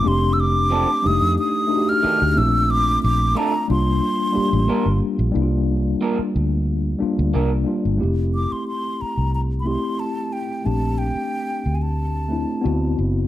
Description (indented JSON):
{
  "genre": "lush 1970s-style soul",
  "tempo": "91 BPM",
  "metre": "4/4",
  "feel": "straight",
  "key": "F major",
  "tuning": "A4 = 441 Hz",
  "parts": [
    { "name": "breathy mellow silver concert flute", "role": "melody", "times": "0.0-13.0 s", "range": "G5 to F6", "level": "-23 LUFS", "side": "equal", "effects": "none" },
    { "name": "mellow tine electric piano", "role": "accompaniment", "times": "0.0-13.3 s", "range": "G3 to G4", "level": "-23 LUFS", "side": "left 2 dB", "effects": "medium stereo tremolo" },
    { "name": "fingered electric bass", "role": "bass", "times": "0.0-13.3 s", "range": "F1 to F2", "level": "-21 LUFS", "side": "equal", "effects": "none" },
    { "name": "electric guitar through a small old amp", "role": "riff", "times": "0.7-7.5 s", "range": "Eb3 to Bb4", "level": "-25 LUFS", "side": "right 5 dB", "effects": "none" }
  ],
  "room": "light reverb",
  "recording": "none",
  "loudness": "-18 LUFS",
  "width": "side -13 dB against mid",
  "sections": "0.0-5.3 A section; 5.3-8.0 B section; 8.0-13.3 C section",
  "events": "none",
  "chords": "0.1 F6; 1.0 F13; 2.4 Bbmaj7; 3.7 C9sus4; 8.0 Fmaj7; 10.7 Bbmaj13; 12.6 D13"
}